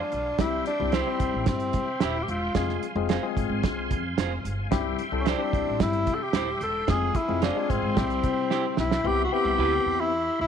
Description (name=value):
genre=uptempo 1960s-style soul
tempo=111 BPM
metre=4/4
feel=straight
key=C major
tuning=A4 = 440 Hz
part: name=breathy tenor saxophone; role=melody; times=0.0-10.5 s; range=C4 to A4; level=-27 LUFS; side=equal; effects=none
part: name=bright tonewheel organ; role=sustained chords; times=0.0-10.5 s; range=E5 to C6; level=-35 LUFS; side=equal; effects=slow rotary speaker, chorus vibrato
part: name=upright bass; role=bass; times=0.1-10.5 s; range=Eb1 to C3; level=-31 LUFS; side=equal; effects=none
part: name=cloth-damped thuddy drum kit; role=drums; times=0.1-9.0 s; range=hi-hat, kick drum, snare drum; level=-29 LUFS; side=right 4 dB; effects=none
part: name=barky tine electric piano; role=accompaniment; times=0.4-10.1 s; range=G3 to A4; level=-31 LUFS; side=left 15 dB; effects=overdrive
part: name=clean electric guitar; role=stabs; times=0.9-9.7 s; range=E4 to C5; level=-35 LUFS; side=right 10 dB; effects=none
room=light reverb, small room ambience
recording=1960s-style stereo with parts hard left and right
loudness=-23 LUFS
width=side -8 dB against mid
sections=0.0-9.0 A section; 9.0-10.5 B section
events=drum fill 8.5-9.0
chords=0.4 C; 2.6 Fm; 4.7 C; 6.9 Fm; 8.0 C; 9.0 Cmaj7